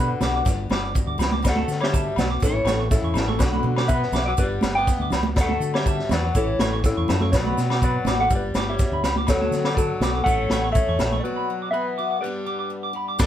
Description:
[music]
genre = highlife guitar band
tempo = 122 BPM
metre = 4/4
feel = straight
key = D major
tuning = A4 = 440 Hz
[part]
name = mellow electric guitar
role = melody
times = 0.0-12.9 s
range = E4 to G5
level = -26 LUFS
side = equal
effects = phaser
[part]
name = bright alto saxophone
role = second line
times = 0.0-12.9 s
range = C#3 to B3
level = -30 LUFS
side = left 4 dB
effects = none
[part]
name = picked steel-string acoustic guitar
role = accompaniment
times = 0.0-13.3 s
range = G2 to A4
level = -32 LUFS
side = left 6 dB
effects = none
[part]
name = clean electric guitar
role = arpeggios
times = 0.0-13.3 s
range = C#5 to D6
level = -30 LUFS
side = right 3 dB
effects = none
[part]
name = deep dub fingered electric bass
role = bass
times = 0.0-13.3 s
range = G1 to D3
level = -26 LUFS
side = equal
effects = none
[part]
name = vintage drum kit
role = drums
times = 0.2-13.3 s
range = crash cymbal, kick drum, snare drum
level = -24 LUFS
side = equal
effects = none
[part]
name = agogo bells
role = percussion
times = 0.2-13.3 s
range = none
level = -34 LUFS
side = left 6 dB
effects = none
[part]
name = congas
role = percussion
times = 0.2-11.2 s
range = none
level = -30 LUFS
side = right 2 dB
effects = none
[part]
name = maracas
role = percussion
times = 0.2-13.3 s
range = none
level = -38 LUFS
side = right 5 dB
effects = none
[part]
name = overdriven combo organ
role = sustained chords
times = 13.2-13.3 s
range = F#4 to D5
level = -28 LUFS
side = left 1 dB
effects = none
[sound]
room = light reverb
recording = band playing live in one room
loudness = -20 LUFS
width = side -11 dB against mid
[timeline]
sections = 0.0-13.2 A section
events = break 11.2-13.2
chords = 0.5 G; 1.4 D; 2.4 A; 3.4 Bm; 4.4 G; 5.4 D; 6.3 A; 7.3 Bm; 8.3 G; 9.3 D; 10.3 A; 11.2 Bm; 12.2 G

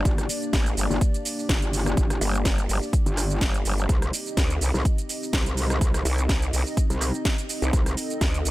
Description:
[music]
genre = bass house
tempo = 125 BPM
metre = 4/4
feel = swing 54% on 16ths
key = unclear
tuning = A4 = 440 Hz
[part]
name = dark analog pad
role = sustained chords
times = 0.0-8.5 s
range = Bb3 to Eb5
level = -32 LUFS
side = left 1 dB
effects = chorus, sidechain pumping
[part]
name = growl bass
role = bass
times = 0.0-8.5 s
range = G1 to D2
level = -24 LUFS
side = equal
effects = chorus, sidechain pumping
[part]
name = metallic wobble bass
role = bass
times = 0.1-8.0 s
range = G1 to C2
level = -26 LUFS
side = equal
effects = chorus, tube saturation, sidechain pumping
[part]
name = electronic kick drum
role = drums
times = 0.1-8.3 s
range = none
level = -23 LUFS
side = equal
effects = none
[part]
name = house drum kit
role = drums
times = 0.1-8.5 s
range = hi-hat, rim click, shaker, snare drum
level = -29 LUFS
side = right 1 dB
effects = none
[sound]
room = little or no reverb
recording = none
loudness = -22 LUFS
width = side -17 dB against mid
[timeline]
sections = 0.0-8.5 A section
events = none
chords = 0.0 Gm; 3.9 Cm

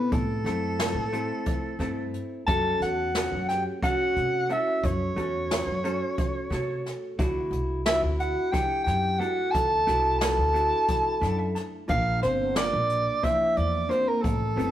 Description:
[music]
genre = progressive instrumental, band music in an uneven meter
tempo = 178 BPM (eighths)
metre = 7/8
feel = straight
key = unclear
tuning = A4 = 440 Hz
[part]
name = mellow soprano saxophone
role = melody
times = 0.0-14.7 s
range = A4 to A5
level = -26 LUFS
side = right 1 dB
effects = none
[part]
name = vibraphone with hard mallets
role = second line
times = 0.0-14.7 s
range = A3 to A4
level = -32 LUFS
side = left 2 dB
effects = none
[part]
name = vintage hollow-body jazz guitar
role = accompaniment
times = 0.0-14.7 s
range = C3 to A5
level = -32 LUFS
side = right 1 dB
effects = none
[part]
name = upright bass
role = bass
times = 0.1-14.7 s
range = F#1 to C3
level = -30 LUFS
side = equal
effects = none
[part]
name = jazz brush drum kit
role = drums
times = 0.1-14.7 s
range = hi-hat, kick drum, snare drum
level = -30 LUFS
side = equal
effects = none
[sound]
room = moderate stone room reverb, RT60 1.2 s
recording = rough rehearsal-room recording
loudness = -24 LUFS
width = side -12 dB against mid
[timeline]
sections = 0.0-14.7 A section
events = hollow-body jazz guitar fill 10.9-11.9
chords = 0.0 Am; 2.5 F#m; 7.2 Dadd9; 11.9 Bb

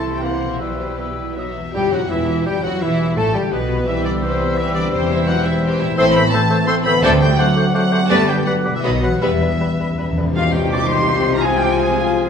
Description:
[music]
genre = classical, dramatic, fast romantic movement for symphony orchestra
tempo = 152-174 BPM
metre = 3/4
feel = rubato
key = E minor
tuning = A4 = 440 Hz
[part]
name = warm symphonic violin section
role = melody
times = 0.0-12.3 s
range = B4 to D6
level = -24 LUFS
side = left 2 dB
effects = none
[part]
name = clear clarinet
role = second line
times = 0.0-12.3 s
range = B3 to C5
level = -26 LUFS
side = left 2 dB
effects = none
[part]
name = clear oboe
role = second line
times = 0.0-12.3 s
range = F4 to C6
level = -27 LUFS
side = right 1 dB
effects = none
[part]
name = rich symphonic violin section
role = second line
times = 0.0-12.3 s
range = B3 to E5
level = -26 LUFS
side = left 2 dB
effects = none
[part]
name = silver concert flute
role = second line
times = 0.0-12.3 s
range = B4 to E6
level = -28 LUFS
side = left 1 dB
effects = none
[part]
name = warm bassoon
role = accompaniment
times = 0.0-12.3 s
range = B2 to Bb3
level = -26 LUFS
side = equal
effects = none
[part]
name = warm studio viola section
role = accompaniment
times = 0.0-12.3 s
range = E3 to E4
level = -26 LUFS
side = equal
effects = none
[part]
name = concert harp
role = arpeggios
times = 0.0-12.3 s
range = E2 to Bb4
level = -27 LUFS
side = left 5 dB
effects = none
[part]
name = dark symphonic double bass section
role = bass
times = 0.0-12.3 s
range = E1 to D2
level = -25 LUFS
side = right 2 dB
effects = none
[part]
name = warm symphonic cello section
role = bass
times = 0.0-12.3 s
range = C2 to C3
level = -26 LUFS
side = right 2 dB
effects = none
[part]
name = mellow French horn section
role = sustained chords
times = 0.2-12.3 s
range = B2 to F4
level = -24 LUFS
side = left 2 dB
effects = none
[part]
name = tam-tam and cymbal swell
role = percussion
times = 1.7-3.1, 8.1-11.8 s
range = none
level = -32 LUFS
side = left 3 dB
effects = none
[part]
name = clear trombone section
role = sustained chords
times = 1.8-12.3 s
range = B2 to C4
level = -25 LUFS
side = right 1 dB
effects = none
[part]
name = timpani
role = percussion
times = 4.9-5.4, 9.2-10.3 s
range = E2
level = -26 LUFS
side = equal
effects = none
[sound]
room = wet recital hall reverb, RT60 1.5 s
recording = none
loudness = -15 LUFS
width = side -7 dB against mid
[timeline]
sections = 0.0-1.7 A section; 1.7-10.4 B section; 10.4-12.3 C section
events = band accent 1.7-2.1, 10.4-10.7; timpani fill 9.2-10.4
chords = 0.2 C7; 0.6 Em/B; 1.4 B; 1.7 Em; 3.9 Cmaj7; 4.9 C/E; 6.0 Am; 7.0 D7; 8.1 G; 8.8 B; 9.2 Em; 10.4 Cm; 11.4 Fm/C

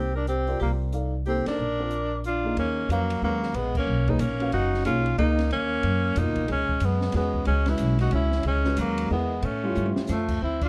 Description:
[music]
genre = modal jazz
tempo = 184 BPM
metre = 3/4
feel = swing 63% on 8ths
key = unclear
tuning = A4 = 439 Hz
[part]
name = breathy tenor saxophone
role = melody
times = 0.0-10.7 s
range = A3 to Gb4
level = -30 LUFS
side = equal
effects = plate reverb
[part]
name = bright alto saxophone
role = second line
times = 0.0-10.7 s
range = F3 to Bb4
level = -35 LUFS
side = equal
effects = none
[part]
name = upright bass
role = bass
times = 0.0-10.7 s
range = Gb1 to A2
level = -29 LUFS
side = equal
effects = none
[part]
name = open jazz drum kit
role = drums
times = 0.3-10.7 s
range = crash cymbal, hi-hat, kick drum, ride cymbal, snare drum, toms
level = -37 LUFS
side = equal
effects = none
[part]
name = dark concert grand piano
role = accompaniment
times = 0.5-10.1 s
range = Cb3 to F5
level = -33 LUFS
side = equal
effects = none
[sound]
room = light reverb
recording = dark, warm production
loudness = -25 LUFS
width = mono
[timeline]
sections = 0.0-2.6 A section; 2.6-10.4 B section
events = band accent 1.4, 3.7; drum fill 9.8-10.1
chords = 0.0 Cm9; 1.6 Bb; 2.6 Ebm11; 6.5 Dbm11; 9.4 A7b13

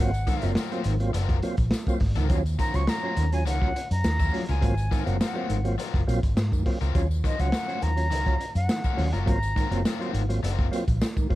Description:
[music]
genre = funk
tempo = 103 BPM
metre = 4/4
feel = straight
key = unclear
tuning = A4 = 439 Hz
[part]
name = concert flute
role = melody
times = 0.0-9.8 s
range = Eb5 to Db6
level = -32 LUFS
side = equal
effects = none
[part]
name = percussive tonewheel organ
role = stabs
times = 0.0-11.4 s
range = Ab2 to F4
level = -32 LUFS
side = right 2 dB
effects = overdrive, chorus vibrato, fast rotary speaker
[part]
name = vintage muted fingered electric bass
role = bass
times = 0.0-11.4 s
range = Gb1 to Ab2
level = -25 LUFS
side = equal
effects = none
[part]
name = crunchy breakbeat drum kit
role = drums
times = 0.1-11.4 s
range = hi-hat, kick drum, snare drum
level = -27 LUFS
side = equal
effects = none
[part]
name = tambourine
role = percussion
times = 0.1-11.3 s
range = none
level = -48 LUFS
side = left 7 dB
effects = none
[part]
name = cranked stack guitar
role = accompaniment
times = 0.3-10.6 s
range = Gb3 to C5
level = -35 LUFS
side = left 9 dB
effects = overdrive
[sound]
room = little or no reverb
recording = dark, warm production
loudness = -23 LUFS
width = side -16 dB against mid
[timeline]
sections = 0.0-11.4 A section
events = none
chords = 0.0 Ab13; 2.3 Ebm9; 4.6 Ab13; 6.9 Ebm9; 9.3 Ab13

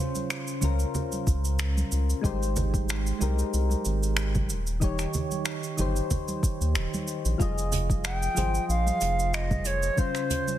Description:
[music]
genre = sunset chillout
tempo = 93 BPM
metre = 4/4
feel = swing 55% on 16ths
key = F minor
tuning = A4 = 439 Hz
[part]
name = soft electric-piano-like synth keys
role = accompaniment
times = 0.0-10.6 s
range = Db3 to Eb5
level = -31 LUFS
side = moving between left 5 dB and right 5 dB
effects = chorus, auto-pan, digital delay
[part]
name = jazz brush drum kit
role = drums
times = 0.2-10.6 s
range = cabasa, finger snaps, hi-hat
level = -33 LUFS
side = right 1 dB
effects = soft clipping on snare
[part]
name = congas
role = percussion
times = 0.2-10.6 s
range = none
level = -35 LUFS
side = right 2 dB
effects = none
[part]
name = round analog bass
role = bass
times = 0.6-9.9 s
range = Eb1 to Eb2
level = -27 LUFS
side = equal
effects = tube saturation
[part]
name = electronic kick drum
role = drums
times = 1.3-10.1 s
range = none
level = -26 LUFS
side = equal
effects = overdrive
[part]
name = bright baroque flute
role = melody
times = 8.1-10.6 s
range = C5 to G5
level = -28 LUFS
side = right 1 dB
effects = digital delay
[sound]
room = light reverb, studio reverb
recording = dense, heavily limited modern master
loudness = -24 LUFS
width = side -12 dB against mid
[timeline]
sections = 0.0-10.6 A section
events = none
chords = 0.0 Dbmaj7; 2.2 Abmaj7; 4.5 Eb7; 7.4 Fm7; 10.0 Dbmaj7

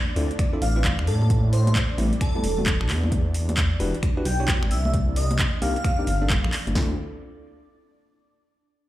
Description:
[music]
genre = UK garage, two-step garage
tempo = 132 BPM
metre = 4/4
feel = swing 64% on 16ths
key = D dorian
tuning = A4 = 440 Hz
[part]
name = soft string machine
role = sustained chords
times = 0.0-6.8 s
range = D4 to D5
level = -39 LUFS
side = left 2 dB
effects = ensemble chorus, sidechain pumping
[part]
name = bell-like tine electric piano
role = stabs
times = 0.2-6.9 s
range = G3 to C#5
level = -31 LUFS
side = moving between left 3 dB and right 3 dB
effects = auto-pan, tape echo
[part]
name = dark detuned saw bass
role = bass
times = 0.2-7.0 s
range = E1 to A2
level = -23 LUFS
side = equal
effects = none
[part]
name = garage drum kit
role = drums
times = 0.2-6.7 s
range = congas, finger snaps, handclaps, hi-hat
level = -29 LUFS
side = equal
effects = overdrive
[part]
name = punchy analog drum machine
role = drums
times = 0.4-6.9 s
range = hi-hat, kick drum, snare drum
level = -24 LUFS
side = equal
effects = none
[part]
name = airy dreamy lead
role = melody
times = 0.6-6.3 s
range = A4 to G5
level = -31 LUFS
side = equal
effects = chorus, tape echo
[sound]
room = light reverb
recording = played on a big sound system in a bare room, large studio reverb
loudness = -20 LUFS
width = side -15 dB against mid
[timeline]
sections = 0.0-6.8 A section; 6.8-8.6 B section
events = drop 0.0-6.8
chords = 0.0 Dm9; 1.1 Am9; 2.9 Em9; 4.9 Cm9; 6.8 Dm9

